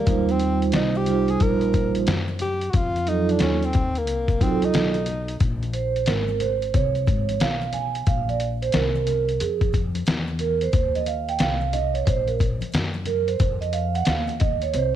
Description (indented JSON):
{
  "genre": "hip hop, jazz-hop",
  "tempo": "90 BPM",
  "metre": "4/4",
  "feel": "swing 65% on 16ths",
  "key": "Bb dorian",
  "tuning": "A4 = 439 Hz",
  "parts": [
    { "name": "breathy tenor saxophone", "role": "melody", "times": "0.0-5.4 s", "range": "Bb3 to Bb4", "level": "-26 LUFS", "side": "left 1 dB", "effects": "cassette tape" },
    { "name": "vibraphone with soft mallets", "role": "accompaniment", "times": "0.0-14.9 s", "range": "Gb3 to Ab5", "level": "-24 LUFS", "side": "right 7 dB", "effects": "cassette tape" },
    { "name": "upright bass", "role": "bass", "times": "0.0-15.0 s", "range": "Ab1 to Gb2", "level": "-27 LUFS", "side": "left 2 dB", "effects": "none" },
    { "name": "trip hop sampler-style drum kit", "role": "drums", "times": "0.1-14.9 s", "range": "hi-hat, kick drum, snare drum", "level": "-24 LUFS", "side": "left 2 dB", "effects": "cassette tape" },
    { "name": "maracas and congas", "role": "percussion", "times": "0.1-14.9 s", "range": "none", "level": "-40 LUFS", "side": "left 12 dB", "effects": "none" }
  ],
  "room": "light reverb, small room ambience",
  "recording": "home recording on cassette",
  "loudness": "-20 LUFS",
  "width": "side -11 dB against mid",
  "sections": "0.0-5.4 A section; 5.4-15.0 A section",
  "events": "tenor saxophone solo 0.0-5.4; vibraphone solo 5.4-15.0",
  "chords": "0.1 Eb69; 2.7 F7b9; 5.4 Bbm9; 8.1 Bbsus2; 10.7 Eb5; 13.4 F7(no3)",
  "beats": "| 0.07 0.74 1.40 2.07 | 2.74 3.40 4.07 4.74 | 5.40 6.07 6.74 7.40 | 8.07 8.74 9.40 10.07 | 10.74 11.40 12.07 12.74 | 13.40 14.07 14.74"
}